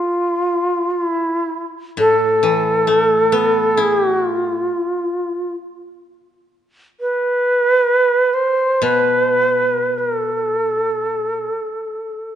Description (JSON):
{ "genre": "japanese traditional, Japanese chamber music", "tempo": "free time", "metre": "none", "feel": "none", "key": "A hirajoshi", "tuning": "A4 = 440 Hz", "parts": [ { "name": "reedy shakuhachi", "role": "melody", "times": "0.0-12.4 s", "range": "E4 to C5", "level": "-16 LUFS", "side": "right 1 dB", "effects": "none" }, { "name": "koto", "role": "accompaniment", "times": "2.0-5.6, 8.8-11.5 s", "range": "A2 to E4", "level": "-23 LUFS", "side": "left 5 dB", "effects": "none" } ], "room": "moderate scoring stage reverb, RT60 2.0 s", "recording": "nothing above 10.9 kHz", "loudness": "-15 LUFS", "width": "side -10 dB against mid", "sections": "0.0-12.4 A section", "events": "none", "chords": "none", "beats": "free time" }